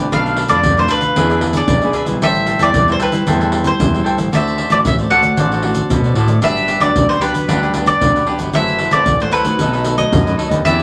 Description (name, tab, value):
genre	samba and choro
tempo	114 BPM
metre	4/4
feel	straight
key	unclear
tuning	A4 = 440 Hz
part	cavaquinho	accompaniment	0.0-10.8 s	D4 to G5	-24 LUFS	equal	none
part	nylon-string guitar	accompaniment	0.0-10.8 s	F#2 to G#4	-24 LUFS	equal	none
part	growling FM bass	bass	0.0-10.8 s	F#1 to B2	-22 LUFS	equal	none
part	bowl-back mandolin	melody	0.1-10.8 s	B4 to F#5	-18 LUFS	equal	none
part	tube shaker, surdo and pandeiro	percussion	0.1-10.8 s	none	-21 LUFS	equal	none
room	wet club reverb, RT60 0.6 s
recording	vinyl crackle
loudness	-15 LUFS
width	mono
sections	0.0-10.8 A section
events	none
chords	0.1 Bm7b5; 1.2 E7; 2.2 Am7; 4.3 D7; 6.4 Gmaj7; 8.5 F#m7b5; 9.6 B7